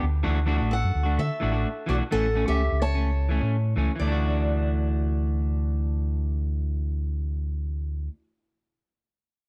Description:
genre	highlife guitar band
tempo	128 BPM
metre	4/4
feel	straight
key	D major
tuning	A4 = 440 Hz
part	electric guitar at the edge of break-up	accompaniment	0.0-8.2 s	E3 to F#4	-33 LUFS	equal	spring reverb
part	fingered electric bass	bass	0.0-8.1 s	A1 to D3	-27 LUFS	equal	none
part	picked steel-string acoustic guitar	melody	0.7-8.1 s	F#4 to A5	-32 LUFS	equal	none
room	little or no reverb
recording	dry, close 1970s-style studio recording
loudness	-26 LUFS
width	mono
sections	0.2-4.0 A section; 4.0-7.8 B section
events	none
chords	0.2 Dadd9; 2.1 A; 4.0 Dadd9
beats	| 0.24 0.71 1.18 1.65 | 2.12 2.59 3.06 3.53 | 4.00 4.47 4.95 5.42 | 5.89 6.36 6.83 7.30

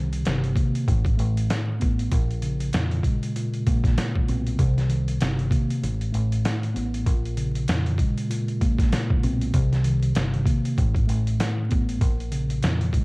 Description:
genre	hip hop, boom-bap hip-hop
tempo	97 BPM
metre	4/4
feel	swing 58% on 16ths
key	unclear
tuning	A4 = 436 Hz
part	mellow tine electric piano	accompaniment	0.0-13.0 s	A2 to C4	-25 LUFS	equal	medium stereo tremolo, cassette tape
part	deep dub fingered electric bass	bass	0.0-12.9 s	G1 to F2	-26 LUFS	equal	none
part	trip hop sampler-style drum kit	drums	0.1-13.0 s	hi-hat, kick drum, snare drum	-24 LUFS	equal	cassette tape
room	little or no reverb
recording	home recording on cassette, vinyl crackle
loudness	-21 LUFS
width	side -26 dB against mid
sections	0.0-7.1 A section; 7.1-13.0 B section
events	break 5.8-7.1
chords	0.0 Cm7; 0.9 Asus2; 2.1 Bbm9; 4.6 Cm7; 5.8 Asus2; 7.1 Bbm9; 9.5 Cm7; 10.8 Asus2; 12.0 Bbm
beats	0.26 0.88 1.50 | 2.11 2.73 3.35 3.97 | 4.59 5.21 5.83 6.44 | 7.06 7.68 8.30 8.92 | 9.54 10.16 10.77 11.39 | 12.01 12.63

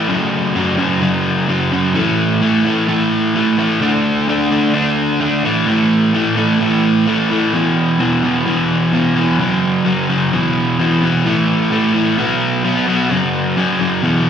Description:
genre	rock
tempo	129 BPM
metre	4/4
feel	straight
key	F# minor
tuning	A4 = 440 Hz
part	overdriven semi-hollow guitar	solo	0.0-14.3 s	E2 to D4	-13 LUFS	equal	slapback echo
room	moderate club reverb, RT60 0.7 s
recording	live gig heard through the venue's PA, recital hall reverb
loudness	-13 LUFS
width	side -8 dB against mid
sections	0.0-9.4 A section; 9.4-14.3 B section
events	none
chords	0.1 F#5; 2.0 A5; 3.8 D5; 5.4 A5; 7.5 E5; 9.4 F#5; 10.3 E5; 11.2 A5; 12.2 B5; 13.1 F#5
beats	| 0.10 0.56 1.03 1.49 | 1.96 2.42 2.89 3.35 | 3.82 4.29 4.75 5.21 | 5.68 6.14 6.61 7.07 | 7.54 8.00 8.46 8.93 | 9.39 9.86 10.32 10.78 | 11.25 11.71 12.18 12.64 | 13.10 13.57 14.03

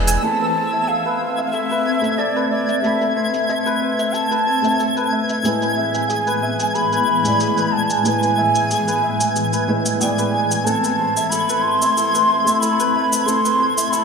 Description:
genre	organic downtempo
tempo	92 BPM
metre	4/4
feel	swing 53% on 16ths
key	A harmonic minor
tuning	A4 = 440 Hz
part	felt-muted upright piano	accompaniment	0.0-14.0 s	A2 to B5	-25 LUFS	equal	wide subtle chorus, ping-pong delay
part	granular cloud pad	sustained chords	0.0-14.0 s	A2 to B5	-25 LUFS	left 1 dB	built-in reverb, ensemble chorus
part	santur	arpeggios	0.0-14.0 s	G#4 to B5	-24 LUFS	right 1 dB	low-pass filter, ping-pong delay
part	twinkling granular texture	texture	0.0-14.0 s	E6 to G#6	-26 LUFS	left 1 dB	built-in reverb
part	organic electronic drum kit	drums	0.1-14.0 s	cabasa, crash cymbal, hi-hat	-26 LUFS	left 1 dB	overdrive, low-pass filter on hats, low-pass filter on perc, low-pass filter on snare, low-pass filter on cymbals, low-pass filter on room
part	breathy bansuri	melody	0.2-14.0 s	D5 to C6	-20 LUFS	equal	ping-pong delay
room	wet lush hall reverb, RT60 1.8 s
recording	bright 1980s-style digital production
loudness	-16 LUFS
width	side -5 dB against mid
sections	0.2-14.0 A section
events	filter sweep on santur 0.2-14.0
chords	0.2 Amadd9; 5.4 E/A; 10.7 Amadd9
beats	| 0.23 0.88 1.53 2.19 | 2.84 3.49 4.14 4.79 | 5.45 6.10 6.75 7.40 | 8.05 8.71 9.36 10.01 | 10.66 11.32 11.97 12.62 | 13.27 13.92

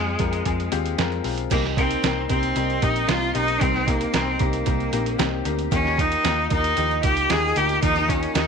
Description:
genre	piano-driven pop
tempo	114 BPM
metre	4/4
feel	straight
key	unclear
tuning	A4 = 439 Hz
part	bright cello	melody	0.0-8.5 s	Ab3 to Ab4	-24 LUFS	equal	slapback echo
part	bright upright piano	accompaniment	0.0-8.5 s	C3 to Bb4	-27 LUFS	left 15 dB	none
part	vintage muted picked electric bass	bass	0.0-8.5 s	Bb1 to F2	-27 LUFS	equal	none
part	lo-fi sampler-style drum kit	drums	0.2-8.5 s	crash cymbal, hi-hat, kick drum, snare drum	-26 LUFS	right 4 dB	none
part	picked steel-string acoustic guitar	riff	1.5-8.5 s	C3 to Eb5	-30 LUFS	right 14 dB	none
room	light reverb, small room ambience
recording	1960s-style stereo with parts hard left and right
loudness	-19 LUFS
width	side -6 dB against mid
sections	0.0-1.5 A section; 1.5-8.5 B section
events	none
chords	0.0 Fm; 1.5 Cm7; 5.7 Ebadd9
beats	0.46 0.98 | 1.51 2.04 2.56 3.09 | 3.61 4.14 4.67 5.19 | 5.72 6.25 6.77 7.30 | 7.83 8.35

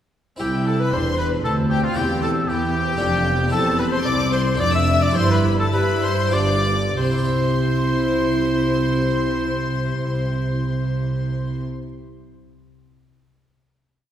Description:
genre	classical, baroque-style concerto movement with solo episodes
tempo	93-116 BPM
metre	3/4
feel	straight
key	C major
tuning	A4 = 440 Hz
part	clear chamber violin section	melody	0.4-11.6 s	F5 to E6	-30 LUFS	left 4 dB	none
part	warm oboe	melody	0.4-11.6 s	F4 to E5	-25 LUFS	left 2 dB	none
part	clear chamber violin section	second line	0.4-11.6 s	F4 to E5	-28 LUFS	left 2 dB	none
part	harpsichord	accompaniment	0.4-11.9 s	C2 to E5	-28 LUFS	left 1 dB	none
part	rich chamber viola section	accompaniment	0.4-11.6 s	B3 to E4	-27 LUFS	equal	none
part	dark studio cello section	bass	0.4-11.6 s	C2 to G3	-24 LUFS	right 2 dB	none
part	warm studio double bass section	bass	0.4-11.6 s	E1 to G2	-25 LUFS	right 1 dB	none
room	wet concert hall reverb, RT60 1.9 s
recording	heard from further back in the room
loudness	-18 LUFS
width	side -10 dB against mid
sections	0.4-7.0 ritornello; 7.0-10.8 final chord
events	slowing down 2.7-7.0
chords	0.4 C; 2.0 C/E; 3.0 Dm/F; 3.5 C/E; 4.6 Dm/F; 5.2 C/G; 6.3 G7; 7.0 C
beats	| 0.41 0.93 1.45 | 1.97 2.49 3.00 | 3.52 4.05 4.60 | 5.16 5.73 6.34 | 6.97 7.61 8.26 | 8.90 9.54 10.19

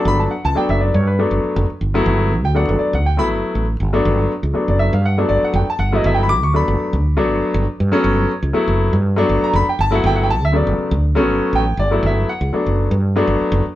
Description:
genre	electric jazz fusion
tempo	120 BPM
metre	4/4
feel	swing 54% on 16ths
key	G lydian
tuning	A4 = 440 Hz
part	clear baby grand piano	accompaniment	0.0-13.6 s	C#3 to D6	-17 LUFS	left 1 dB	none
part	woody fretless electric bass	bass	0.1-13.7 s	F#1 to G2	-18 LUFS	right 1 dB	none
room	light reverb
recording	band playing live in one room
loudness	-15 LUFS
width	side -14 dB against mid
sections	0.0-13.8 A section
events	none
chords	0.0 Gmaj7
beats	| 0.06 0.56 1.06 1.56 | 2.06 2.56 3.05 3.55 | 4.05 4.55 5.05 5.55 | 6.05 6.55 7.05 7.54 | 8.04 8.54 9.04 9.54 | 10.04 10.54 11.04 11.53 | 12.03 12.53 13.03 13.53

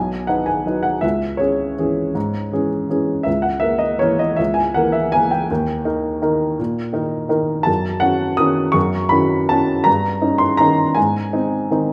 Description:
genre	classical, piano waltz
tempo	163 BPM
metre	3/4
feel	uneven beats, rubato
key	unclear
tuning	A4 = 440 Hz
part	warm upright piano	solo	0.0-11.9 s	B1 to D#6	-18 LUFS	equal	none
room	moderate recital hall reverb, RT60 1.3 s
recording	none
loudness	-18 LUFS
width	mono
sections	0.0-11.9 A section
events	none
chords	0.0 B; 1.0 C#m; 3.3 A#dim/C#; 5.5 D#; 7.7 D#m7b5/F#; 9.9 D#7/G; 11.0 G#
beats	0.28 0.65 | 1.03 1.40 1.78 | 2.15 2.52 2.89 | 3.27 3.63 4.02 | 4.39 4.75 5.13 | 5.49 5.85 6.23 | 6.59 6.95 7.32 | 7.68 8.03 8.39 | 8.75 9.11 9.50 | 9.86 10.22 10.60 | 10.97 11.33 11.71

